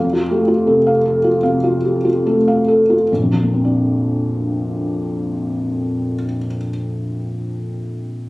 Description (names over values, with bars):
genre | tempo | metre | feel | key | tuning
neoclassical minimalist piano | 69-82 BPM | 4/4 | rubato | Bb major | A4 = 442 Hz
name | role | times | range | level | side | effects
felt-muted upright piano | solo | 0.0-8.3 s | Bb1 to F5 | -15 LUFS | equal | none
room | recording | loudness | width
light reverb | recorded on a phone in the room, club reverb, compression | -15 LUFS | side -20 dB against mid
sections
0.0-3.1 A section; 3.1-6.5 B section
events
slowing down 0.0-3.1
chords
0.0 F; 3.1 Bbadd9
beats
0.66 1.43 2.24 | 3.09 3.92 4.76 5.61